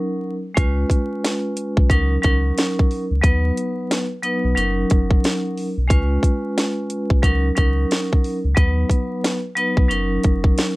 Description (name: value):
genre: hip hop, boom-bap hip-hop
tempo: 90 BPM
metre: 4/4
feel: swing 62% on 16ths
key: F# major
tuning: A4 = 440 Hz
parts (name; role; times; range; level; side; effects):
- vibraphone with hard mallets; accompaniment; 0.0-10.8 s; F#3 to B4; -22 LUFS; equal; cassette tape, high-pass filter, low-pass filter
- warm sub bass; bass; 0.6-10.5 s; F#1 to D#2; -20 LUFS; equal; none
- garage drum kit; drums; 0.6-10.8 s; hi-hat, kick drum, snare drum; -18 LUFS; equal; none
room: light reverb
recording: vinyl crackle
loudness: -17 LUFS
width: side -21 dB against mid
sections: 0.6-10.8 A section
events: break 0.0-0.6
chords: 0.0 F#6; 0.6 C#7; 1.9 F#6/C#; 3.2 B/D#; 4.6 F#6; 5.9 C#7; 7.2 F#6/C#; 8.6 B/D#; 9.9 F#6